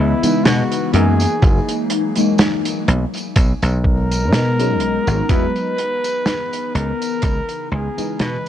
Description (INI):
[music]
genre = vaporwave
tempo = 62 BPM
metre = 4/4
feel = swing 55% on 16ths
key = C# dorian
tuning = A4 = 440 Hz
[part]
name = mellow flugelhorn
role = melody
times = 0.0-8.5 s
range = E4 to B4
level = -24 LUFS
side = equal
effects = vintage 12-bit sampler grit, tape echo
[part]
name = warbly tape-like pad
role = sustained chords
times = 0.0-8.5 s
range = C#3 to D#5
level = -26 LUFS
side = left 6 dB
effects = chorus, built-in reverb, phaser
[part]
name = dry thumbed slap bass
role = bass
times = 0.0-8.4 s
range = F#1 to B2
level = -18 LUFS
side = equal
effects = none
[part]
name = FM electric piano with soft pad layer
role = accompaniment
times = 0.2-8.5 s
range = E3 to D#4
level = -20 LUFS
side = left 1 dB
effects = phaser, lush chorus, tape echo
[part]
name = warm soul drum kit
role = drums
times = 0.2-8.5 s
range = hi-hat, snare drum, tambourine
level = -21 LUFS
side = right 1 dB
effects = vintage 12-bit sampler grit
[part]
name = electronic kick drum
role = drums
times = 1.4-7.4 s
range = none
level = -16 LUFS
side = equal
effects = vintage 12-bit sampler grit
[sound]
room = small room reverb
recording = cassette tape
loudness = -15 LUFS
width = side -10 dB against mid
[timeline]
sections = 0.0-8.5 A section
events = fade-out 2.7-8.5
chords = 0.0 C#m9; 0.9 F#13; 2.9 B69; 5.3 Emaj7; 6.7 C#m9